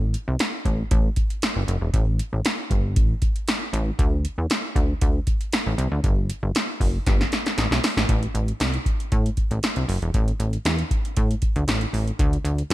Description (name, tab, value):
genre	early-eighties boogie funk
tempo	117 BPM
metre	4/4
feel	straight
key	A dorian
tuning	A4 = 439 Hz
part	plucky analog bass	bass	0.0-12.7 s	E1 to A2	-23 LUFS	equal	none
part	electro analog drum machine	drums	0.1-12.7 s	hi-hat, kick drum, snare drum	-22 LUFS	equal	none
room	little or no reverb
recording	none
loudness	-20 LUFS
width	side -16 dB against mid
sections	0.0-8.1 A section; 8.1-12.7 B section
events	drum fill 7.1-8.1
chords	none